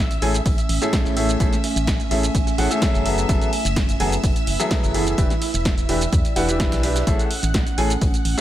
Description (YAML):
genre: piano house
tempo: 127 BPM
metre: 4/4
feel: straight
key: A major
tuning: A4 = 440 Hz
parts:
  - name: string machine, violins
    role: sustained chords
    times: 0.0-8.4 s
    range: E5 to F#6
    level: -31 LUFS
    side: equal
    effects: ensemble chorus, sidechain pumping
  - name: organ-like FM bass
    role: bass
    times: 0.0-8.3 s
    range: E1 to E2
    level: -24 LUFS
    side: equal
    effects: sidechain pumping
  - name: warbly tape-like pad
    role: texture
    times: 0.1-8.4 s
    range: A3 to G#5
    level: -28 LUFS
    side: right 4 dB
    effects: chorus, built-in reverb, sidechain pumping
  - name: dusty soul sampler-style drum kit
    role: drums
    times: 0.1-8.4 s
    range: hi-hat, snare drum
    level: -36 LUFS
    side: equal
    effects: none
  - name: punchy analog drum machine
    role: drums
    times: 0.1-8.4 s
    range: hi-hat, shaker, snare drum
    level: -27 LUFS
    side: right 1 dB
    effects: none
  - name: clear upright piano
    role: riff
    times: 0.2-8.4 s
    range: A2 to G#5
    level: -24 LUFS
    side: left 2 dB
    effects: sidechain pumping, tape echo
  - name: electronic kick drum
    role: drums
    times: 0.5-8.1 s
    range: none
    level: -21 LUFS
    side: equal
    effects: none
room: little or no reverb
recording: none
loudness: -18 LUFS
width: side -13 dB against mid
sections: 0.0-8.4 A section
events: none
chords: 0.0 Amaj7; 3.1 F#m11; 5.2 Em7; 7.1 Amaj7